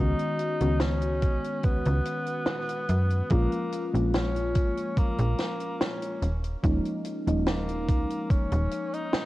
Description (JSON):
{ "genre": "vaporwave", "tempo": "72 BPM", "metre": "4/4", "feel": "straight", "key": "unclear", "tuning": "A4 = 440 Hz", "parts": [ { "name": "mellow tenor saxophone", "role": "melody", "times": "0.0-9.3 s", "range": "A#3 to D#4", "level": "-33 LUFS", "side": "equal", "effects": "tape echo" }, { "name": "mellow FM electric piano", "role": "accompaniment", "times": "0.0-9.3 s", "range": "D#3 to F#4", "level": "-30 LUFS", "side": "left 1 dB", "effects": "wide subtle chorus" }, { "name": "slap-like FM bass", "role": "bass", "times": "0.0-8.7 s", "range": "D#1 to F#2", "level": "-27 LUFS", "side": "equal", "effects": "none" }, { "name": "compact cocktail drum kit", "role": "drums", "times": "0.2-9.3 s", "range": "hi-hat, snare drum", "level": "-31 LUFS", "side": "equal", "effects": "studio reverb" }, { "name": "electronic kick drum", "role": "drums", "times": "1.2-8.5 s", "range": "none", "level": "-25 LUFS", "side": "equal", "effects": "overdrive, studio reverb" } ], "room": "light reverb, small room ambience", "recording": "dark, warm production, cassette tape", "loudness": "-25 LUFS", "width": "side -17 dB against mid", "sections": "0.0-9.3 A section", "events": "none", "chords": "0.0 C#9sus4; 3.3 A#m7; 6.2 D#9sus4" }